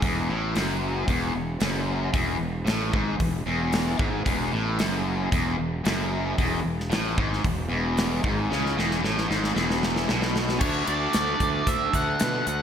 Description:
classic rock; 113 BPM; 4/4; straight; E major; A4 = 440 Hz
distorted electric guitar; riff; 0.0-12.6 s; E2 to F#4; -26 LUFS; left 1 dB; distortion
fuzz fingered electric bass; bass; 0.0-12.6 s; E1 to B2; -30 LUFS; equal; overdrive
gated 80s drum kit; drums; 0.0-12.6 s; crash cymbal, hi-hat, kick drum, snare drum; -27 LUFS; equal
octave-fuzz lead guitar; melody; 10.6-12.6 s; C#5 to F#5; -26 LUFS; right 2 dB; distortion
moderate lush hall reverb, RT60 1.9 s, small room reverb; big arena sound; -23 LUFS; side -8 dB against mid
0.0-10.6 A section; 10.6-12.6 B section
drum fill 8.5-10.6
0.0 E; 10.6 D

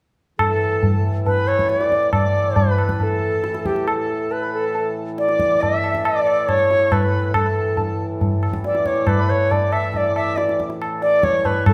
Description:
indian classical, Hindustani; 138 BPM; 4/4; straight; A major; A4 = 440 Hz
bright reedy bansuri; melody; 0.4-11.7 s; G4 to E5; -22 LUFS; equal
pedal harmonium; drone; 0.4-11.7 s; A2 to E3; -31 LUFS; equal
tabla; percussion; 0.4-11.7 s; -23 LUFS; equal
hand-pumped harmonium; second line; 0.5-11.7 s; A4 to E5; -32 LUFS; equal
wet recital hall reverb, RT60 1.4 s; recorded in a church or concert hall; -19 LUFS; mono
0.4-11.7 A section

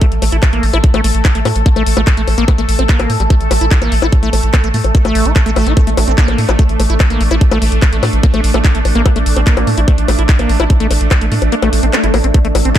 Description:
psychedelic trance; 146 BPM; 4/4; straight; A4 = 441 Hz
bubbling stepped-filter texture; sustained chords; 0.0-12.8 s; A3 to A4; -19 LUFS; right 1 dB; chorus, built-in reverb, sidechain pumping
liquid acid bass; riff; 0.0-12.8 s; G3 to E4; -20 LUFS; moving between left 3 dB and right 3 dB; chorus, auto-pan, sidechain pumping, digital delay
electronic kick drum; drums; 0.0-12.8 s; -10 LUFS; equal
garage drum kit; drums; 0.0-12.8 s; bongos, handclaps, hi-hat; -19 LUFS; left 5 dB
round analog bass; bass; 0.1-12.7 s; G1 to A2; -14 LUFS; equal
swell; sound effects; 11.7-12.3 s; -20 LUFS; left 1 dB
little or no reverb; dark, warm production; -10 LUFS; side -11 dB against mid
0.0-12.8 A section
kick drops out 11.5-12.3; swell 11.7-12.3
0.0 A5

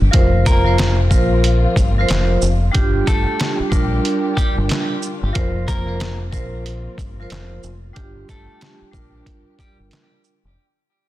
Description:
hip hop, boom-bap hip-hop; 92 BPM; 4/4; swing 61% on 16ths; G minor; A4 = 439 Hz
deep dub fingered electric bass; bass; 0.0-10.6 s; F1 to Bb1; -19 LUFS; equal
vibraphone with medium hard mallets; accompaniment; 0.1-10.3 s; F3 to C5; -22 LUFS; right 1 dB; cassette tape, high-pass filter, low-pass filter
dark studio string section; sustained chords; 0.1-10.5 s; G3 to G4; -30 LUFS; left 4 dB; high-pass filter, low-pass filter
trip hop sampler-style drum kit; drums; 0.1-10.4 s; handclaps, hi-hat, kick drum, shaker, snare drum; -19 LUFS; equal
clean electric guitar; melody; 0.5-9.8 s; G3 to Bb4; -27 LUFS; equal; high-pass filter, low-pass filter, digital delay
little or no reverb; dense, heavily limited modern master; -15 LUFS; side -15 dB against mid
0.0-10.6 A section
fade-out 0.0-10.6
0.1 Fsus4; 2.7 Gm7; 5.4 Fsus4; 8.0 Gm7

